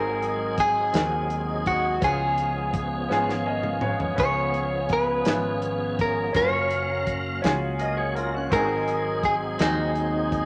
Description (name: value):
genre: slow gospel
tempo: 56 BPM (dotted quarters)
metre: 6/8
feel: straight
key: unclear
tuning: A4 = 439 Hz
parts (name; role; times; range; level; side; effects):
- clean electric guitar; melody; 0.0-10.5 s; D#4 to C#5; -27 LUFS; equal; spring reverb
- clear grand piano; accompaniment; 0.0-10.5 s; G#2 to G#5; -32 LUFS; equal; none
- dark French horn section; sustained chords; 0.0-10.5 s; F#3 to E#5; -38 LUFS; equal; none
- tonewheel organ; sustained chords; 0.0-10.5 s; E#3 to E#5; -34 LUFS; equal; slow rotary speaker, overdrive, chorus vibrato
- mellow fretless electric bass; bass; 0.0-10.5 s; F#1 to D#2; -34 LUFS; equal; none
- warm soul drum kit; drums; 0.2-10.5 s; hi-hat, kick drum, snare drum, toms; -30 LUFS; equal; none
room: moderate studio reverb, RT60 0.5 s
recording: none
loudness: -25 LUFS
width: mono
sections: 0.0-10.5 A section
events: drum fill 3.1-4.2; grand piano fill 3.1-4.2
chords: 0.0 G#7; 2.0 C#7; 6.3 F#maj7; 8.5 G#7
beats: 0.94 | 2.02 3.10 | 4.18 5.27 | 6.35 7.43 | 8.51 9.60